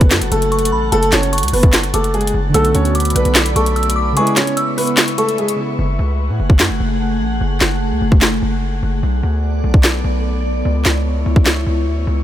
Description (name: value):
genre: hip hop, trap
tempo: 148 BPM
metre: 4/4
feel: half-time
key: F# minor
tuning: A4 = 441 Hz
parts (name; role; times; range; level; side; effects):
- dark concert grand piano; melody; 0.0-5.6 s; G#3 to C#5; -19 LUFS; equal; ping-pong delay
- glassy synth bell; second line; 0.0-5.4 s; A5 to E6; -22 LUFS; equal; chorus, ping-pong delay
- warbly lo-fi synth keys; accompaniment; 0.0-5.8 s; C#3 to F#4; -23 LUFS; right 1 dB; chorus
- glassy FM pad; sustained chords; 0.0-12.2 s; A3 to C#6; -23 LUFS; left 1 dB; ensemble chorus, built-in reverb
- hard-hitting 808-style bass; bass; 0.0-12.2 s; F#1 to A2; -18 LUFS; equal; none
- trap drum kit; drums; 0.0-11.6 s; handclaps, hi-hat, kick drum, snare drum; -15 LUFS; equal; none
room: digital ambience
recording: none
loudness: -13 LUFS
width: side -12 dB against mid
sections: 0.0-5.8 A section; 5.8-12.2 B section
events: kick muted 4.2-5.8; hi-hats muted 5.8-12.2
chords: 0.0 F#m; 2.5 Bm7; 4.2 C#m7; 5.8 F#madd9; 9.0 Bm7; 10.7 C#m7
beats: 0.11 0.52 | 0.92 1.33 1.73 2.14 | 2.54 2.95 3.36 3.76 | 4.17 4.57 4.98 5.38 | 5.79 6.19 6.60 7.00 | 7.41 7.82 8.22 8.63 | 9.03 9.44 9.84 10.25 | 10.65 11.06 11.46 11.87